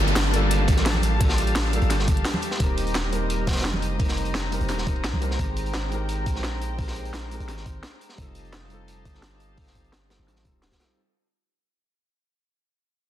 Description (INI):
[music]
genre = liquid drum and bass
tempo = 172 BPM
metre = 4/4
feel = straight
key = unclear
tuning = A4 = 440 Hz
[part]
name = felt-muted upright piano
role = accompaniment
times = 0.0-11.0 s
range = G3 to Bb4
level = -32 LUFS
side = right 1 dB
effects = digital delay
[part]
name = warm studio string section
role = sustained chords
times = 0.0-10.9 s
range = Ab3 to Bb5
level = -33 LUFS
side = left 2 dB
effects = sidechain pumping
[part]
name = long sustained 808-style bass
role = bass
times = 0.0-10.8 s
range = Eb1 to C2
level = -26 LUFS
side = equal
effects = none
[part]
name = downlifter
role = sound effects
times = 0.0-2.6 s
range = none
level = -29 LUFS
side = equal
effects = none
[part]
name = crunchy breakbeat drum kit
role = drums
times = 0.1-10.9 s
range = hi-hat, snare drum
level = -33 LUFS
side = equal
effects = high-pass filter on hats, high-pass filter on snare, high-pass filter on room
[part]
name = drum and bass drum kit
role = drums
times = 0.1-10.9 s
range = hi-hat, snare drum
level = -30 LUFS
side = equal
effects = overdrive, low-pass filter on snare, low-pass filter on hats, low-pass filter on cymbals, low-pass filter on perc, low-pass filter on room
[part]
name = electronic kick drum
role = drums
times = 0.7-10.8 s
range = none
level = -25 LUFS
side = equal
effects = none
[part]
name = congas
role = percussion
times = 0.7-5.2 s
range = none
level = -33 LUFS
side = right 2 dB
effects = none
[sound]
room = light reverb, small room ambience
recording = dense, heavily limited modern master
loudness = -22 LUFS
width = side -12 dB against mid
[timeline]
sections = 0.0-11.0 A section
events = fade-out 0.0-11.0; filter sweep on drum 0.0-11.0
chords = 0.0 Gm9; 2.6 Eb6; 5.4 Abmaj9; 8.2 F9